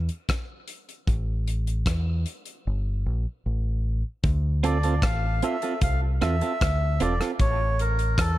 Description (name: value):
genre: dub reggae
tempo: 76 BPM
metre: 4/4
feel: straight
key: D minor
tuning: A4 = 441 Hz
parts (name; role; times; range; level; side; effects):
- deep dub fingered electric bass; bass; 0.0-8.4 s; E1 to E2; -24 LUFS; equal; none
- damped 70s drum kit; drums; 0.1-8.4 s; hi-hat, kick drum, rim click; -26 LUFS; equal; none
- melodica; melody; 4.6-8.4 s; A4 to F5; -29 LUFS; equal; dub echo
- clean electric guitar; accompaniment; 4.6-7.3 s; C4 to A4; -30 LUFS; right 6 dB; spring reverb, dub echo
room: small room ambience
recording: none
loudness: -23 LUFS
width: side -15 dB against mid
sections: 0.0-4.2 A section; 4.2-8.4 B section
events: break 0.0-4.2; drums muted 2.7-4.2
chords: 0.0 N.C.; 1.1 A5; 4.2 Dm7; 7.4 A5